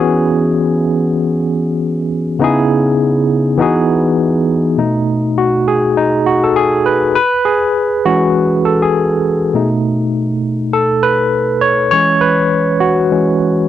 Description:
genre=soul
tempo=101 BPM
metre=4/4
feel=swing 58% on 16ths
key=E major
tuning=A4 = 441 Hz
part: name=barky tine electric piano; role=solo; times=0.0-13.7 s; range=B2 to C#5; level=-11 LUFS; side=equal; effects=overdrive, auto-pan
room=light reverb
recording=dry, close 1970s-style studio recording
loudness=-11 LUFS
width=side -11 dB against mid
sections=0.0-4.8 A section; 4.8-13.7 B section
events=tine electric piano solo 4.8-13.7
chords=0.0 E6; 2.4 C#m7; 3.6 Emaj7; 4.8 B7; 7.2 E69; 9.5 B7; 11.9 E69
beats=| 0.04 0.63 1.22 1.81 | 2.41 3.00 3.59 4.19 | 4.78 5.38 5.97 6.56 | 7.16 7.75 8.35 8.94 | 9.54 10.13 10.73 11.32 | 11.92 12.52 13.11

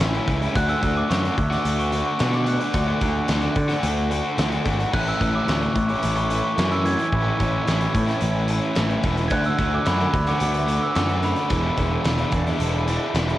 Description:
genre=indie rock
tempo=110 BPM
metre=4/4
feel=straight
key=A major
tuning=A4 = 440 Hz
part: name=raw garage guitar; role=riff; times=0.0-13.4 s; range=E2 to F#4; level=-25 LUFS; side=left 1 dB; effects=overdrive, cassette tape
part: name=fuzz picked electric bass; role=bass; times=0.0-13.3 s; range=E1 to D3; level=-24 LUFS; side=equal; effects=overdrive
part: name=big rock drum kit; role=drums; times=0.0-13.4 s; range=crash cymbal, hi-hat, kick drum, snare drum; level=-27 LUFS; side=equal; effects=none
part: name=glockenspiel with soft plastic mallets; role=melody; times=0.6-13.1 s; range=B5 to G#6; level=-27 LUFS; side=right 1 dB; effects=cassette tape
part: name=crunchy overdriven guitar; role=riff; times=4.9-13.4 s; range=A2 to A4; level=-32 LUFS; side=right 5 dB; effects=none
room=light reverb, small room ambience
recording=home recording on cassette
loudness=-19 LUFS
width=side -14 dB against mid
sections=0.0-13.4 A section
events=none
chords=0.0 A; 0.5 D; 4.9 Amaj7; 9.3 D6; 11.5 E7sus4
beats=0.00 | 0.55 1.10 1.64 2.19 | 2.74 3.29 3.84 4.38 | 4.93 5.48 6.03 6.58 | 7.12 7.67 8.22 8.77 | 9.31 9.86 10.41 10.96 | 11.50 12.05 12.60 13.15

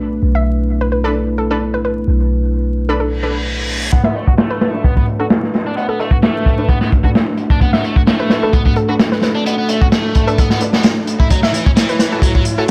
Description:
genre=breakbeat, breaks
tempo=130 BPM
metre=4/4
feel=swing 53% on 16ths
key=unclear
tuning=A4 = 440 Hz
part: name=dark analog pad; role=sustained chords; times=0.0-12.7 s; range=A3 to C#5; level=-24 LUFS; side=equal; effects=chorus, sidechain pumping
part: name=warm 808-style bass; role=bass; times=0.0-3.9 s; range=B1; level=-20 LUFS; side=equal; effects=tube saturation
part: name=downlifter, reverse cymbal and riser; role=sound effects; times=3.1-12.7 s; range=none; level=-30 LUFS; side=equal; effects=none
part: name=hollow square pluck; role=melody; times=0.3-12.7 s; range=A4 to E5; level=-25 LUFS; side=equal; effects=chorus, small speaker sound, dub echo
part: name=orchestra-hit-like synth stab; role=stabs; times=1.0-12.7 s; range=D4 to B4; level=-26 LUFS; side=equal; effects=built-in reverb, dub echo
part: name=biting overdriven guitar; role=riff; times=3.9-12.6 s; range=E3 to F#4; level=-24 LUFS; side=equal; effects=low-pass filter, dub echo
part: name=crunchy breakbeat drum kit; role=drums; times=3.9-12.7 s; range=hi-hat, kick drum, snare drum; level=-16 LUFS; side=equal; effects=low-pass filter on kick, low-pass filter on hats, low-pass filter on snare, low-pass filter on room
room=light reverb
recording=vinyl crackle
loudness=-15 LUFS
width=mono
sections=0.0-3.9 A section; 3.9-12.7 B section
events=reverse cymbal 3.1-3.9; build-up 3.9-12.7; filter sweep on drum 3.9-12.7; filter sweep on overdriven electric guitar 3.9-12.7; filter sweep on synth stab 3.9-12.7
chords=0.0 Bm7; 11.3 F#m7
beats=| 0.23 0.69 1.15 1.61 | 2.08 2.54 3.00 3.46 | 3.92 4.38 4.84 5.31 | 5.77 6.23 6.69 7.15 | 7.61 8.08 8.54 9.00 | 9.46 9.92 10.38 10.85 | 11.31 11.77 12.23 12.69

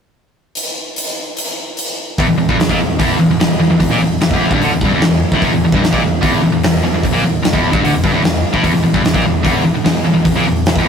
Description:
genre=hard rock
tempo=149 BPM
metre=4/4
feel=straight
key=E minor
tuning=A4 = 440 Hz
part: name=huge arena drum kit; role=drums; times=0.6-10.8 s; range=hi-hat, kick drum, snare drum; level=-16 LUFS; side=equal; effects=none
part: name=high-gain distorted guitar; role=riff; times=2.2-10.9 s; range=E2 to D3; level=-14 LUFS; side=equal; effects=distortion
part: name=picked electric bass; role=bass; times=2.2-10.9 s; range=E1 to D2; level=-21 LUFS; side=right 1 dB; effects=none
room=moderate studio reverb, RT60 0.5 s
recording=rough rehearsal-room recording, warm saturation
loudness=-12 LUFS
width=side -7 dB against mid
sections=0.6-2.2 A section; 2.2-10.9 B section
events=none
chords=0.6 N.C.; 2.2 Em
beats=| 0.57 0.97 1.38 1.78 | 2.19 2.59 2.99 3.40 | 3.80 4.21 4.61 5.01 | 5.41 5.82 6.22 6.62 | 7.03 7.43 7.83 8.23 | 8.64 9.04 9.44 9.85 | 10.25 10.65

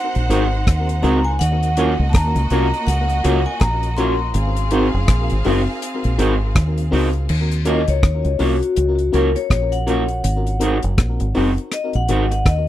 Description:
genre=lovers rock reggae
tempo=81 BPM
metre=4/4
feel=swing 59% on 16ths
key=Eb dorian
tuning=A4 = 437 Hz
part: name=vibraphone with medium hard mallets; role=melody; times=0.0-12.7 s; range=Gb4 to C6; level=-24 LUFS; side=left 3 dB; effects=tape echo
part: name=rich studio string section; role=second line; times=0.0-7.3 s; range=Bb3 to Gb5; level=-28 LUFS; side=right 2 dB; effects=none
part: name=deep reggae drum kit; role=drums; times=0.1-12.7 s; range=crash cymbal, hi-hat, kick drum, rim click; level=-19 LUFS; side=equal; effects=none
part: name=deep dub fingered electric bass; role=bass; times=0.2-12.7 s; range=Gb1 to Eb2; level=-19 LUFS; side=equal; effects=none
part: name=FM electric piano with tremolo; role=accompaniment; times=0.3-12.2 s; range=C4 to Bb4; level=-24 LUFS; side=left 3 dB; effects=tape echo
part: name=electric guitar through a small old amp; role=stabs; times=0.3-12.4 s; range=Eb3 to Gb4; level=-21 LUFS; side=right 4 dB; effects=none
room=light reverb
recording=dry, close 1970s-style studio recording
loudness=-16 LUFS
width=side -13 dB against mid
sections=0.0-7.3 A section; 7.3-12.7 B section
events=vibraphone solo 7.3-12.7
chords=0.0 Ab7; 1.4 Ebm7; 4.3 Ab7; 7.3 Ebm7; 10.2 Ab7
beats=0.67 | 1.40 2.14 2.87 3.61 | 4.35 5.08 5.82 6.56 | 7.29 8.03 8.77 9.51 | 10.24 10.98 11.72 12.46

